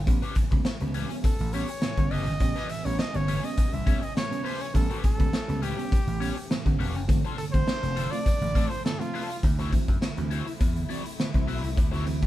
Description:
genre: funk.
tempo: 103 BPM.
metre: 4/4.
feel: straight.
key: A mixolydian.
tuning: A4 = 440 Hz.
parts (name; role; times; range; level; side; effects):
warm studio string section; sustained chords; 0.0-12.3 s; E3 to E4; -42 LUFS; left 4 dB; none.
vintage slap bass; bass; 0.0-12.3 s; E1 to F#2; -30 LUFS; equal; none.
crunchy overdriven guitar; accompaniment; 0.1-12.3 s; C#4 to D5; -38 LUFS; left 6 dB; wah.
mellow reed electric piano; stabs; 0.1-12.2 s; G2 to C#4; -34 LUFS; right 3 dB; none.
raw garage drum kit; drums; 0.1-12.3 s; hi-hat, kick drum, snare drum; -26 LUFS; equal; none.
warm trumpet; melody; 1.2-9.4 s; F4 to E5; -33 LUFS; right 1 dB; none.
room: little or no reverb.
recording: band playing live in one room.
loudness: -24 LUFS.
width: side -14 dB against mid.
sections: 0.0-9.4 A section; 9.4-12.3 B section.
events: trumpet solo 0.0-9.4.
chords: 0.1 A9; 7.1 G9sus4; 9.4 D9.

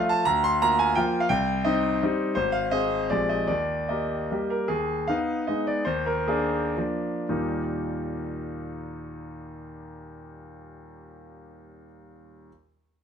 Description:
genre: classical, romantic triple-time dance for piano with dotted rhythms.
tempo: 106-189 BPM.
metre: 3/4.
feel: rubato.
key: Eb major.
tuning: A4 = 441 Hz.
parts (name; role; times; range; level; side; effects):
bright concert grand piano; solo; 0.0-12.5 s; Ab1 to C6; -24 LUFS; equal; none.
room: moderate stone room reverb, RT60 1.0 s.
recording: close, detailed microphones.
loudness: -23 LUFS.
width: side -7 dB against mid.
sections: 0.0-4.7 A section; 4.7-7.3 B section; 7.3-10.4 C section.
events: slowing down 4.1-7.3.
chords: 0.3 Bb/D; 1.3 Cm; 2.3 Ab6; 3.1 Bb13; 3.5 Eb; 4.7 Abm/Eb; 5.8 Bb7/Eb; 7.3 Eb.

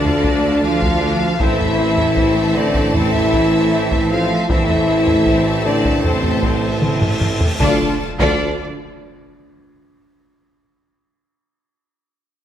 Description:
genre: cinematic, epic orchestral film score.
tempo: 77 BPM.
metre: 4/4.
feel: straight.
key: D minor.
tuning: A4 = 437 Hz.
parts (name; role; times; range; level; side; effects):
rich symphonic violin section; melody; 0.0-8.6 s; C5 to F5; -24 LUFS; left 2 dB; none.
rich symphonic violin section; second line; 0.0-8.6 s; F4 to F5; -27 LUFS; left 2 dB; none.
rich symphonic viola section; accompaniment; 0.0-8.6 s; F3 to F4; -26 LUFS; right 1 dB; none.
mellow French horn section; sustained chords; 0.0-8.0 s; C4 to F4; -19 LUFS; left 2 dB; none.
rich symphonic string section; sustained chords; 0.0-8.1 s; A3 to A5; -24 LUFS; equal; none.
rich symphonic cello section; bass; 0.0-8.6 s; C3 to D4; -25 LUFS; right 2 dB; none.
rich symphonic double bass section; bass; 0.0-8.6 s; A1 to D2; -24 LUFS; right 3 dB; none.
warm tuba; bass; 0.0-8.6 s; A1 to D2; -23 LUFS; right 3 dB; none.
solo taiko drums; drums; 0.1-9.7 s; none; -21 LUFS; equal; none.
cymbal swell and impact; sound effects; 6.4-10.7 s; none; -29 LUFS; equal; none.
timpani; percussion; 7.6-8.6 s; D3; -27 LUFS; equal; none.
room: moderate scoring stage reverb, RT60 1.5 s.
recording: none.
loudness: -14 LUFS.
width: side -10 dB against mid.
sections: 0.0-7.6 A section; 7.6-10.7 B section.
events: cymbal swell 6.4-7.6; drum fill 6.8-7.6; impact 7.6-10.7.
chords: 0.0 Dm; 1.4 Am; 7.6 Dm.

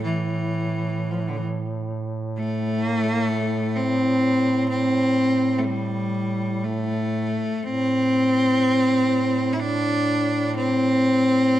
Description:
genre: caucasian folk, Caucasian lament.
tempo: 62 BPM.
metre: 3/4.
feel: uneven beats, rubato.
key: A minor.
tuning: A4 = 440 Hz.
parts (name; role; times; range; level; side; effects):
bright cello; melody; 0.0-11.6 s; D3 to E4; -20 LUFS; equal; none.
mellow duduk; drone; 0.0-11.6 s; A2; -28 LUFS; right 2 dB; none.
room: moderate scoring stage reverb, RT60 2.0 s.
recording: dark, warm production.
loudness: -20 LUFS.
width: side -13 dB against mid.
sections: 0.0-11.6 A section.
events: none.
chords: none.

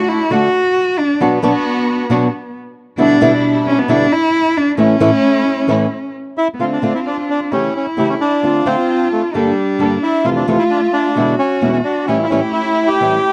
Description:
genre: tango.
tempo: 132 BPM.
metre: 4/4.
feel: rubato.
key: D minor from 6.6 s.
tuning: A4 = 437 Hz.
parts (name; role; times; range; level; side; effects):
warm cello; second line; 0.0-13.3 s; B3 to F#4; -19 LUFS; equal; none.
rich studio string section; stabs; 0.0-13.2 s; B2 to E5; -24 LUFS; equal; slapback echo.
flamenco guitar; accompaniment; 0.3-13.2 s; E2 to A4; -18 LUFS; equal; none.
bandoneon; melody; 6.4-13.3 s; G3 to G4; -19 LUFS; equal; none.
room: light reverb, small room ambience.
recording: dry, close 1970s-style studio recording.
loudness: -15 LUFS.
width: mono.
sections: 0.0-6.6 A section; 6.6-13.3 B section.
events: cello solo 0.0-6.6.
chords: 0.0 D; 1.2 Bm; 3.0 Em7/B; 4.8 A; 6.6 Dm7; 7.5 A7/C#; 8.4 Dm7; 9.3 Gmadd9; 10.3 Fmaj7; 11.2 E7; 12.1 A7.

